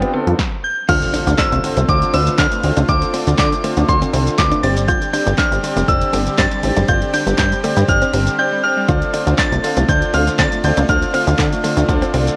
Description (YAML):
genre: dance-pop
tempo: 120 BPM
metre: 4/4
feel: straight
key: D minor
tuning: A4 = 445 Hz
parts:
  - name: warm grand piano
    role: accompaniment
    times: 0.0-12.3 s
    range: B3 to F5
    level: -25 LUFS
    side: equal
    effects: sidechain pumping
  - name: supersaw chords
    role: sustained chords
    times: 0.0-12.4 s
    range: D3 to G4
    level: -30 LUFS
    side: equal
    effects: sidechain pumping
  - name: direct-recorded clean electric guitar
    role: riff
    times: 0.0-12.2 s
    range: A3 to F4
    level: -26 LUFS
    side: equal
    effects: analog chorus
  - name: plucky analog bass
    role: bass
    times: 0.0-12.3 s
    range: F1 to D3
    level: -19 LUFS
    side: equal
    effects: sidechain pumping
  - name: deep house drum kit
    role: drums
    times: 0.0-12.4 s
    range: crash cymbal, handclaps, hi-hat, kick drum, shaker, snare drum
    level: -22 LUFS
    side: equal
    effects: none
  - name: swell and impact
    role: sound effects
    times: 0.0-2.9 s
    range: none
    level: -32 LUFS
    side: equal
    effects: none
  - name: hollow square pluck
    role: arpeggios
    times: 0.1-12.3 s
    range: D3 to C4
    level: -32 LUFS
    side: equal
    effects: none
  - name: soft synth bell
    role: melody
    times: 0.6-12.1 s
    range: C6 to A6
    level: -22 LUFS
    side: equal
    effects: chorus, phaser, slapback echo
room: digital ambience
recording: worn, warbling old tape, cassette tape, warbly pitch drift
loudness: -16 LUFS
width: mono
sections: 0.9-12.4 A section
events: swell 0.0-0.9; stop 0.4-0.9; impact 0.9-2.9; drums muted 8.4-8.9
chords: 0.0 G7; 0.9 Dm7; 4.6 Gsus4; 8.9 Dm7